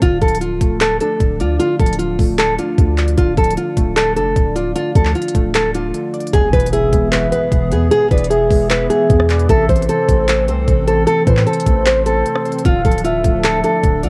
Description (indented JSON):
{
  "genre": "hip hop, trap",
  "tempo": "152 BPM",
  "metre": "4/4",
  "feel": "half-time",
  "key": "unclear",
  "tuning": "A4 = 442 Hz",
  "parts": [
    { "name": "nylon-string guitar", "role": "melody", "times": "0.0-14.1 s", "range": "F4 to C5", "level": "-19 LUFS", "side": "equal", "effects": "tape echo" },
    { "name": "warbly lo-fi synth keys", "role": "accompaniment", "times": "0.0-14.1 s", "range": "B2 to D5", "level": "-26 LUFS", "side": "equal", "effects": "chorus, cassette tape" },
    { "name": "long sustained 808-style bass", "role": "bass", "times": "0.0-14.1 s", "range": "D1 to A2", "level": "-22 LUFS", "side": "equal", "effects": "none" },
    { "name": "trap drum kit", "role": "drums", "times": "0.0-14.1 s", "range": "handclaps, hi-hat, kick drum, rim click", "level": "-19 LUFS", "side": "equal", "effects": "cassette tape" },
    { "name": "soft octave-layered synth lead", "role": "second line", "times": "6.3-13.8 s", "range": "B4 to G#5", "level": "-25 LUFS", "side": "equal", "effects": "chorus, phaser, cassette tape, tape echo" },
    { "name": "hollow soft pad", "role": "sustained chords", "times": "6.3-14.1 s", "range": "E3 to A4", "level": "-26 LUFS", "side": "equal", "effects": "ensemble chorus, cassette tape" },
    { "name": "impact", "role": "sound effects", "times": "6.3-7.9 s", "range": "none", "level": "-29 LUFS", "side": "equal", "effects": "none" }
  ],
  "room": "light reverb, digital ambience",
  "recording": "home recording on cassette",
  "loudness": "-15 LUFS",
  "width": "mono",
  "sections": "0.0-6.3 A section; 6.3-14.1 B section",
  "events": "impact 6.3-7.9",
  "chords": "0.0 Dm; 6.3 E; 9.5 Am; 12.7 Dm"
}